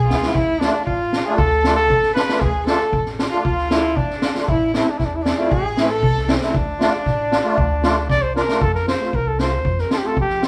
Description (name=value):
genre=klezmer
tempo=116 BPM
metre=4/4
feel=straight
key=D dorian sharp4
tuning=A4 = 440 Hz
part: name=warm cornet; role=melody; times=0.0-10.4 s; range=D4 to D5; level=-23 LUFS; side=equal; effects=none
part: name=dark violin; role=second line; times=0.0-8.1 s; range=C4 to B4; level=-29 LUFS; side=equal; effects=none
part: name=upright bass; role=bass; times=0.0-10.5 s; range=A1 to F3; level=-27 LUFS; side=equal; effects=none
part: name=musette accordion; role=accompaniment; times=0.1-10.5 s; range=G#3 to F4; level=-26 LUFS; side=equal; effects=none
part: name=street-band drum kit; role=drums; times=0.1-10.5 s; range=kick drum, snare drum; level=-25 LUFS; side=equal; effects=none
room=wet stone room reverb, RT60 1.0 s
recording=band playing live in one room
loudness=-19 LUFS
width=mono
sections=0.0-8.6 A section; 8.6-10.5 B section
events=drum fill 0.0-0.3, 8.1-8.6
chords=0.3 Dm; 4.5 Am; 6.5 Dm; 8.6 F